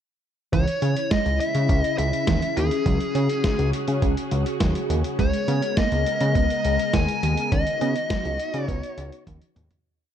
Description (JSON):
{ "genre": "synth-pop", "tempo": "103 BPM", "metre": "4/4", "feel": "straight", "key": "C# dorian", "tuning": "A4 = 440 Hz", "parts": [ { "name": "dark smooth lead guitar", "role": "melody", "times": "0.5-9.2 s", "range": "G#4 to G#5", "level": "-26 LUFS", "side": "left 2 dB", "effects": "overdrive, tape echo" }, { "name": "soft string machine", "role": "sustained chords", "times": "1.0-9.8 s", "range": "C#3 to A#4", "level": "-29 LUFS", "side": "left 1 dB", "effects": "phaser, ensemble chorus" }, { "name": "soft round pluck", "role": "arpeggios", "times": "0.5-9.4 s", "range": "D#3 to C#4", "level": "-30 LUFS", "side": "right 8 dB", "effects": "chorus, tape echo" }, { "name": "fat analog bass", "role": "bass", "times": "0.5-9.7 s", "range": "C#2 to C#3", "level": "-24 LUFS", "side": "equal", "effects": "none" }, { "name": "lo-fi sampler-style drum kit", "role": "drums", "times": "0.5-9.8 s", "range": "hi-hat, kick drum, snare drum, toms", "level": "-26 LUFS", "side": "equal", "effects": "none" } ], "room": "moderate scoring stage reverb, RT60 2.2 s", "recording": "dark, warm production", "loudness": "-20 LUFS", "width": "side -9 dB against mid", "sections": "0.5-9.8 verse", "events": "fade-out 7.5-9.8; drum fill 9.3-9.8", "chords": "0.5 C#madd9; 2.9 F#sus2/C#; 5.2 G#madd9/C#; 7.5 B/C#" }